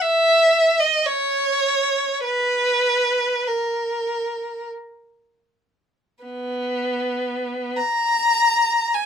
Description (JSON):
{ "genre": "classical, free, expressive piece for unaccompanied violin", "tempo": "free time", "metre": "none", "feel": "none", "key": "B major", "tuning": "A4 = 439 Hz", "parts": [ { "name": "rich violin", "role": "solo", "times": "0.0-9.1 s", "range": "B3 to A#5", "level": "-18 LUFS", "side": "equal", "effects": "none" } ], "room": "light reverb", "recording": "minimal, uncompressed stereo recording", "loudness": "-18 LUFS", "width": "side -7 dB against mid", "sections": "0.0-9.1 A section", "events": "none", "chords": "none" }